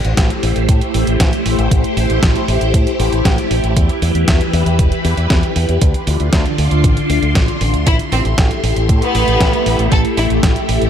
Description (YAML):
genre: italo disco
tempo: 117 BPM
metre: 4/4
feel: straight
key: A minor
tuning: A4 = 440 Hz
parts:
  - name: phased string machine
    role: sustained chords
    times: 0.0-10.9 s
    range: D3 to C6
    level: -18 LUFS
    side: left 1 dB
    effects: ensemble chorus, phaser, vintage 12-bit sampler grit
  - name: fingered electric bass with an envelope filter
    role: bass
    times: 0.0-10.9 s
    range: E1 to A2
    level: -17 LUFS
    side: equal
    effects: none
  - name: clean 12-bit digital drum machine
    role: drums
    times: 0.0-10.9 s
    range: hi-hat, snare drum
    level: -21 LUFS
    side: right 1 dB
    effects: none
  - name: electronic kick drum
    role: drums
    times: 0.2-10.5 s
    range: none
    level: -15 LUFS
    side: equal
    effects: none
  - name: bright symphonic violin section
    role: melody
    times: 7.9-10.3 s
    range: B3 to A4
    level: -19 LUFS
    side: left 1 dB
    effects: ping-pong delay
room: light reverb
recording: none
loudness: -12 LUFS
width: side -9 dB against mid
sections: 0.0-10.9 A section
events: none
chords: 0.0 Am7; 3.8 Em; 5.8 Dm7; 7.9 Am7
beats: 0.17 0.69 1.20 | 1.71 2.23 2.74 3.25 | 3.76 4.28 4.79 5.30 | 5.82 6.33 6.84 7.35 | 7.87 8.38 8.89 9.40 | 9.92 10.43